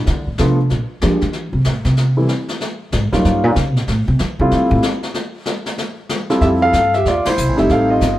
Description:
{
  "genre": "jazz piano trio",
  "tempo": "189 BPM",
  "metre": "4/4",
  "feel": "swing 63% on 8ths",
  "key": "F major",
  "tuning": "A4 = 440 Hz",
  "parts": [
    { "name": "upright bass", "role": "bass", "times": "0.0-8.2 s", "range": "F1 to F3", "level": "-17 LUFS", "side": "equal", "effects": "none" },
    { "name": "jazz brush drum kit", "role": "drums", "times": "0.1-8.2 s", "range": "brushed snare drum, hi-hat, kick drum, ride cymbal, snare drum", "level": "-24 LUFS", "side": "left 2 dB", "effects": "none" },
    { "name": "warm grand piano", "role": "melody", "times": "0.4-8.2 s", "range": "E3 to F5", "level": "-16 LUFS", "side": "equal", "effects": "none" }
  ],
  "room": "moderate plate reverb, RT60 1.2 s",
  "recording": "heard from further back in the room",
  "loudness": "-14 LUFS",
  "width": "side -14 dB against mid",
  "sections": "0.0-6.4 A section; 6.4-8.2 B section",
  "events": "upright bass solo 0.0-6.4; band accent 7.2",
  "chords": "0.1 Bm7b5; 0.7 Bb7; 1.3 Am; 2.6 N.C.; 3.2 Eb9; 3.9 Fmaj9; 5.2 N.C.; 6.4 Fmaj9"
}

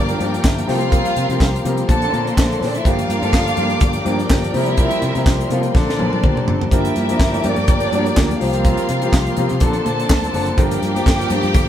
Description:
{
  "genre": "disco",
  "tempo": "124 BPM",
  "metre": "4/4",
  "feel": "swing 56% on 16ths",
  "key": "G dorian",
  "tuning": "A4 = 440 Hz",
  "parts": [
    { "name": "dark studio violin section", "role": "second line", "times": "0.0-11.7 s", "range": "G3 to A5", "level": "-24 LUFS", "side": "equal", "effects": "none" },
    { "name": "warm baby grand piano", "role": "accompaniment", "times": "0.0-11.7 s", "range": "D3 to Bb4", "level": "-22 LUFS", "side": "left 4 dB", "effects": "none" },
    { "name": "clear studio string section", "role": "sustained chords", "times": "0.0-11.7 s", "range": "Bb3 to D6", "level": "-27 LUFS", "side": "equal", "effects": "none" },
    { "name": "fingered electric bass", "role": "bass", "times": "0.0-11.7 s", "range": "F#1 to C3", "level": "-23 LUFS", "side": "equal", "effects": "none" },
    { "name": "mellow electric guitar", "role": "accompaniment", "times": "0.1-11.6 s", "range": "F3 to Bb4", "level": "-26 LUFS", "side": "right 5 dB", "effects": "none" },
    { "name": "tight funk drum kit", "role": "drums", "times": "0.1-11.7 s", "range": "handclaps, hi-hat, kick drum, snare drum, toms", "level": "-17 LUFS", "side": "equal", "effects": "none" },
    { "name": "congas", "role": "percussion", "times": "0.2-11.7 s", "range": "none", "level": "-29 LUFS", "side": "left 2 dB", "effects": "none" },
    { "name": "cowbell", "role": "percussion", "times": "10.6-11.7 s", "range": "none", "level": "-31 LUFS", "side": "right 3 dB", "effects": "none" }
  ],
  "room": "moderate studio reverb, RT60 0.8 s",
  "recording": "band playing live in one room",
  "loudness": "-15 LUFS",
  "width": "side -10 dB against mid",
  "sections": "0.0-6.7 A section; 6.7-11.7 B section",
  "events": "drum fill 5.7-6.7",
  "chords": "0.0 Gm7; 0.7 C7sus4; 1.9 Bbmaj9; 2.8 Gm7; 4.5 C7sus4; 5.7 Bbmaj9; 6.7 Gm7; 8.4 C7sus4; 9.6 Bbmaj9; 10.6 Gm7"
}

